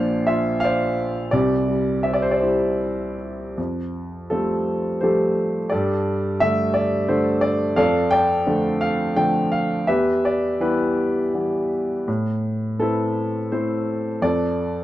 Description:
classical, lyrical solo piano; 76-89 BPM; 3/4; rubato; F lydian from 3.6 s; A4 = 440 Hz
clear grand piano; solo; 0.0-14.8 s; Bb1 to G5; -19 LUFS; equal
moderate studio reverb, RT60 0.8 s; dark, warm production; -19 LUFS; side -14 dB against mid
0.0-3.6 A section; 3.6-14.8 B section
0.0 Bbadd9; 1.3 C; 3.6 Fadd9; 5.7 Gsus2; 7.8 Dm/F; 9.9 Em; 12.1 Amadd9; 14.2 F
0.64 | 1.33 2.05 2.81 | 3.58 4.32 5.03 | 5.72 6.41 7.09 | 7.78 8.47 9.16 | 9.87 10.60 11.34 | 12.07 12.80 13.52 | 14.22

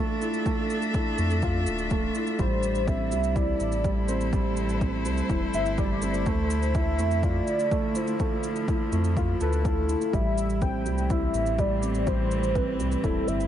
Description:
piano and strings electronica; 124 BPM; 4/4; straight; A minor; A4 = 440 Hz
warm string quartet; sustained chords; 0.0-13.5 s; A2 to E5; -33 LUFS; left 2 dB; sidechain pumping
felt-muted upright piano; riff; 0.0-13.5 s; G3 to A4; -29 LUFS; right 2 dB; ping-pong delay
shaker; drums; 0.2-13.5 s; -43 LUFS; right 4 dB
electronic kick drum; drums; 0.5-13.1 s; -29 LUFS; equal
round analog bass; bass; 1.2-13.5 s; D1 to F2; -28 LUFS; left 1 dB; sidechain pumping
warm velvety synth lead; melody; 2.4-13.5 s; A4 to G5; -30 LUFS; equal; chorus, phaser, ping-pong delay
light reverb; nothing above 10.3 kHz; -23 LUFS; side -10 dB against mid
0.0-13.5 A section
0.0 Dmadd9; 2.4 Am7; 6.3 Dmadd9; 10.1 Am7
| 0.46 0.94 1.43 1.91 | 2.39 2.88 3.36 3.85 | 4.33 4.81 5.30 5.78 | 6.26 6.75 7.23 7.72 | 8.20 8.68 9.17 9.65 | 10.14 10.62 11.10 11.59 | 12.07 12.55 13.04

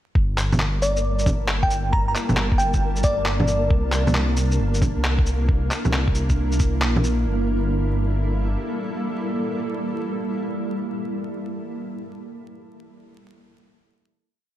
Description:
future garage; 135 BPM; 4/4; swing 65% on 16ths; G dorian; A4 = 441 Hz
granular cloud pad; sustained chords; 1.1-10.7 s; G3 to A5; -28 LUFS; right 1 dB; built-in reverb, sidechain pumping
dark detuned saw bass; bass; 0.2-8.6 s; G1 to C2; -23 LUFS; equal; sidechain pumping
electronic kick drum; drums; 0.2-6.7 s; -21 LUFS; equal
flickering grainy texture; texture; 0.5-7.3 s; Bb3 to Bb4; -34 LUFS; left 1 dB; built-in reverb
electronic handclaps, shaker and bongos; drums; 0.4-7.2 s; -25 LUFS; equal
bell-like FM electric piano; melody; 0.8-3.7 s; D5 to Bb5; -26 LUFS; equal; chorus, analog delay
light reverb, digital ambience; vinyl crackle; -20 LUFS; side -13 dB against mid
0.2-7.3 groove; 7.3-10.8 final chord
0.2 Gm69; 3.7 C9; 7.3 Gm69
| 0.15 0.60 1.04 1.49 | 1.93 2.38 2.82 3.26 | 3.71 4.15 4.60 5.04 | 5.49 5.93 6.38 6.82 | 7.26 7.71 8.15 8.60 | 9.04 9.49 9.93 10.38

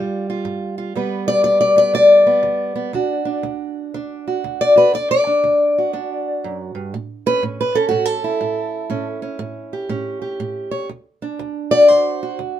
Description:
acoustic country blues, solo or duo; 121 BPM; 4/4; swing 64% on 8ths; D major; A4 = 439 Hz
fingerpicked steel-string acoustic guitar; solo; 0.0-12.6 s; D2 to D5; -16 LUFS; left 1 dB
light reverb; minimal, uncompressed stereo recording; -15 LUFS; side -11 dB against mid
0.0-12.6 A section
steel-string acoustic guitar solo 0.0-12.6
0.0 G7; 2.9 D; 6.9 A7; 10.9 D7
0.44 | 0.94 1.44 1.94 2.44 | 2.94 3.44 3.94 4.44 | 4.94 5.43 5.93 6.43 | 6.93 7.42 7.92 8.42 | 8.92 9.41 9.91 10.41 | 10.90 11.40 11.90 12.40

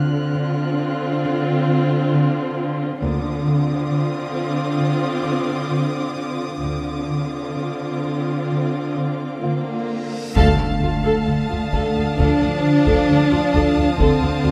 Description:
cinematic, suspense film score; 66 BPM; 4/4; straight; D phrygian; A4 = 440 Hz
warm studio viola section; accompaniment; 0.0-14.5 s; C4 to A4; -27 LUFS; equal
concert harp; riff; 0.0-14.5 s; D3 to D4; -26 LUFS; equal
rich studio cello section; bass; 0.0-14.5 s; D3 to D4; -25 LUFS; equal
warm studio double bass section; bass; 0.0-14.5 s; D2; -26 LUFS; equal
felt-muted upright piano; texture; 0.0-14.5 s; Bb3 to D6; -38 LUFS; equal
rich studio violin section; texture; 0.0-14.5 s; A5 to F#6; -37 LUFS; equal
reverse cymbal and impact; sound effects; 10.1-14.0 s; -31 LUFS; equal
dark French horn section; sustained chords; 9.4-14.5 s; D3 to F3; -30 LUFS; equal
rich studio violin section; melody; 10.4-14.5 s; A5; -33 LUFS; equal
rich studio violin section; second line; 10.4-14.5 s; F5; -31 LUFS; equal
taiko ensemble; drums; 10.4-14.5 s; -26 LUFS; equal
moderate concert hall reverb, RT60 2.3 s; close, detailed microphones; -20 LUFS; mono
0.0-10.4 A section; 10.4-14.5 B section
reverse cymbal 10.1; band accent 10.4-11.3; impact 10.4-14.0
0.0 Dm7; 10.4 Dm
0.34 1.23 2.12 | 3.01 3.90 4.79 5.69 | 6.62 7.56 8.50 9.43 | 10.36 11.27 12.19 13.10 | 14.00

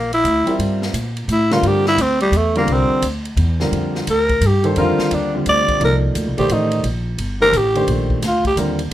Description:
modal jazz; 173 BPM; 3/4; swing 65% on 8ths; C mixolydian, F mixolydian from 3.7 s; A4 = 440 Hz
growling tenor saxophone; melody; 0.0-8.6 s; G3 to D5; -16 LUFS; equal
upright bass; bass; 0.0-8.9 s; G1 to Bb2; -20 LUFS; equal
swinging big-band drum kit; drums; 0.1-8.9 s; hi-hat, kick drum, ride cymbal, snare drum; -28 LUFS; left 1 dB
warm grand piano; accompaniment; 0.5-8.9 s; D3 to E5; -21 LUFS; equal
light reverb; dark, warm production; -15 LUFS; side -13 dB against mid
0.0-3.7 A section; 3.7-8.9 A section
tenor saxophone solo 0.0-8.9
0.0 C9; 3.7 F13sus4
0.25 | 0.59 0.94 1.29 | 1.64 1.99 2.33 | 2.68 3.03 3.38 | 3.73 4.07 4.42 | 4.77 5.12 5.46 | 5.81 6.16 6.50 | 6.85 7.19 7.54 | 7.89 8.23 8.58 | 8.92

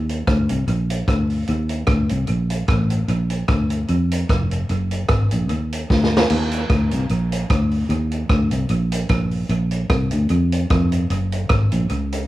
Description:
ska; 150 BPM; 4/4; swing 55% on 8ths; A4 = 441 Hz
fingered electric bass; bass; 0.0-12.2 s; F1 to F2; -19 LUFS; equal
vintage drum kit; drums; 0.1-12.2 s; crash cymbal, hi-hat, kick drum, rim click, snare drum; -22 LUFS; equal; dub echo
little or no reverb; vinyl crackle; -17 LUFS; side -16 dB against mid
0.0-6.3 A section; 6.3-12.3 B section
drum fill 5.9-6.3
0.28 0.68 1.08 | 1.48 1.88 2.28 2.69 | 3.09 3.49 3.89 4.29 | 4.69 5.09 5.49 5.89 | 6.29 6.69 7.09 7.49 | 7.89 8.29 8.70 9.10 | 9.50 9.90 10.30 10.70 | 11.10 11.50 11.90

